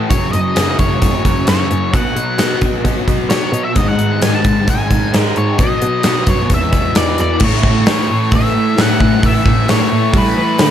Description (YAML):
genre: rock, shoegaze and dream pop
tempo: 132 BPM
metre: 4/4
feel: straight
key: A major from 7.4 s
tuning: A4 = 440 Hz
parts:
  - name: fuzz guitar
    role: riff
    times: 0.0-10.7 s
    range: E2 to B3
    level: -17 LUFS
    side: left 1 dB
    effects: distortion, wide subtle chorus
  - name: clear cello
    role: bass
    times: 0.0-10.7 s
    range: E2 to G3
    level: -18 LUFS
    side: right 1 dB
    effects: none
  - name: octave-fuzz lead guitar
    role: melody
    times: 0.1-10.7 s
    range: B4 to A5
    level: -20 LUFS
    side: left 2 dB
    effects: distortion, analog delay
  - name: gated 80s drum kit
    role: drums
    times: 0.1-10.7 s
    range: crash cymbal, hi-hat, kick drum, snare drum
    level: -15 LUFS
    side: equal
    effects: none
room: light reverb, small room reverb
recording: dark, warm production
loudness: -12 LUFS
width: side -10 dB against mid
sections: 0.0-7.4 A section; 7.4-10.7 B section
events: none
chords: 0.1 F#5; 1.9 B5; 3.8 G#5; 5.6 B; 6.5 E5; 7.4 A